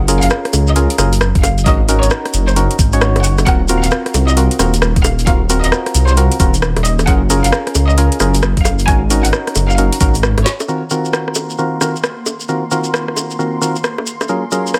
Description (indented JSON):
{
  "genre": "UK garage, two-step garage",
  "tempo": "133 BPM",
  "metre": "4/4",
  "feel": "swing 64% on 16ths",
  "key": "Eb dorian",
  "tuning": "A4 = 441 Hz",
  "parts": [
    { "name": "bright studio violin section", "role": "melody", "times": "0.0-10.6 s", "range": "C5 to Ab5", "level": "-24 LUFS", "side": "equal", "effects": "digital delay" },
    { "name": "dark detuned saw bass", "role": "bass", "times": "0.0-10.4 s", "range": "Eb1 to Db2", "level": "-16 LUFS", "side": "equal", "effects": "sidechain pumping" },
    { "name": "percussive organ stab", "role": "stabs", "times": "0.1-14.8 s", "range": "Eb3 to Db5", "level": "-21 LUFS", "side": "equal", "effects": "chorus, dub echo" },
    { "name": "garage drum kit", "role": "drums", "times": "0.1-14.8 s", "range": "bongos, hi-hat, rim click, snare drum", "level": "-21 LUFS", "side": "equal", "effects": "overdrive, studio reverb" },
    { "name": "shekere", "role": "percussion", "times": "0.1-14.8 s", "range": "none", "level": "-26 LUFS", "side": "equal", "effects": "none" },
    { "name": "electronic kick drum", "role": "drums", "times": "1.4-10.1 s", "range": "none", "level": "-16 LUFS", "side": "equal", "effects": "overdrive, studio reverb" },
    { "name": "ethereal airy pad", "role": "sustained chords", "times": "11.4-14.8 s", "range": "Bb3 to C6", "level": "-30 LUFS", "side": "equal", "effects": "ensemble chorus, built-in reverb, sidechain pumping" }
  ],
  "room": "little or no reverb",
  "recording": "none",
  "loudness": "-14 LUFS",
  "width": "mono",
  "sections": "0.0-10.7 A section; 10.7-14.8 B section",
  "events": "drum fill 10.5",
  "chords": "0.0 Gbmaj9; 1.7 Ab9sus4; 3.5 Ebm69; 7.1 Gbmaj9; 8.9 Ab9sus4; 10.7 Ebm69; 14.3 Gbmaj9",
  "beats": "0.31 0.76 1.21 | 1.66 2.11 2.56 3.01 | 3.46 3.92 4.37 4.82 | 5.27 5.72 6.17 6.62 | 7.07 7.53 7.98 8.43 | 8.88 9.33 9.78 10.23 | 10.68 11.13 11.59 12.04 | 12.49 12.94 13.39 13.84 | 14.29 14.74"
}